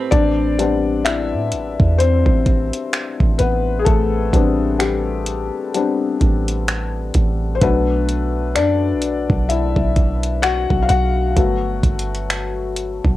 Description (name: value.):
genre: contemporary R&B.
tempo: 64 BPM.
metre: 4/4.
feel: swing 58% on 16ths.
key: A dorian.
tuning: A4 = 440 Hz.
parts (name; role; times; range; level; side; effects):
felt-muted upright piano; accompaniment; 0.0-13.2 s; F#3 to F#5; -19 LUFS; left 5 dB; none.
direct-recorded clean electric guitar; arpeggios; 0.0-0.7 s; A3 to B4; -26 LUFS; right 6 dB; tape echo.
warm 808-style bass; bass; 0.1-13.2 s; G1 to A2; -20 LUFS; right 1 dB; none.
smooth R&B drum kit; drums; 0.1-13.2 s; finger snaps, hi-hat, kick drum; -18 LUFS; right 1 dB; cassette tape.
room: moderate studio ambience, RT60 0.5 s.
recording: home recording on cassette.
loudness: -16 LUFS.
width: side -15 dB against mid.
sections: 0.1-13.2 A section.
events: felt piano solo 0.1-13.2.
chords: 0.1 Am11; 7.6 Bm7; 11.4 Gmaj7.